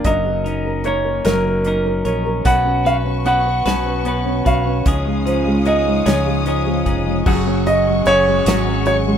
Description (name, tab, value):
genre	six-eight pop ballad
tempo	50 BPM (dotted quarters)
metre	6/8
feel	straight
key	F# major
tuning	A4 = 440 Hz
part	clear concert grand piano	melody	0.0-9.0 s	A#4 to F#5	-19 LUFS	right 1 dB	none
part	flamenco guitar	accompaniment	0.0-9.2 s	A#2 to C#5	-20 LUFS	equal	double-tracked left and right
part	clean electric guitar	arpeggios	0.0-9.2 s	C#3 to B4	-25 LUFS	left 3 dB	none
part	fretless electric bass	bass	0.0-9.2 s	E#1 to C#2	-22 LUFS	equal	none
part	natural country drum kit	drums	0.0-9.0 s	crash cymbal, hi-hat, kick drum, snare drum	-20 LUFS	equal	none
part	warm studio string section	sustained chords	2.5-9.2 s	F#4 to D#6	-28 LUFS	left 3 dB	none
room	light reverb, small room ambience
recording	rough home demo mix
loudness	-15 LUFS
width	side -8 dB against mid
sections	0.0-7.3 A section; 7.3-9.2 B section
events	none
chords	0.1 F#6; 2.5 Bsus2; 4.9 C#add9; 7.3 F#sus2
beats	| 0.05 1.25 | 2.45 3.65 | 4.86 6.06 | 7.26 8.46